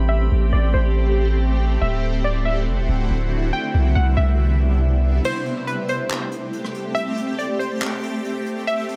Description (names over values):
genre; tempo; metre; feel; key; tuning
hip hop, atmospheric cloud-rap; 140 BPM; 4/4; half-time; A dorian; A4 = 440 Hz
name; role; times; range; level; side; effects
shimmering ambient pad; sustained chords; 0.0-9.0 s; C3 to G4; -28 LUFS; equal; chorus, built-in reverb, phaser, low-pass filter
long sustained 808-style bass; bass; 0.0-5.2 s; D1 to C2; -20 LUFS; equal; none
drifting glass-harmonics texture; texture; 0.0-5.2 s; C4 to B5; -38 LUFS; equal; chorus, built-in reverb
glassy wavetable pluck; melody; 0.1-9.0 s; B4 to G5; -29 LUFS; equal; chorus, low-pass filter, digital delay
jazz brush drum kit; drums; 5.2-9.0 s; crash cymbal, handclaps, hi-hat, rim click; -34 LUFS; equal; none
room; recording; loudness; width
small room ambience; none; -21 LUFS; mono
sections
0.0-5.2 A section; 5.2-9.0 B section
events
break 5.2-9.0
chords
0.0 Am9; 1.8 D9; 3.5 Cmaj9; 5.2 Am7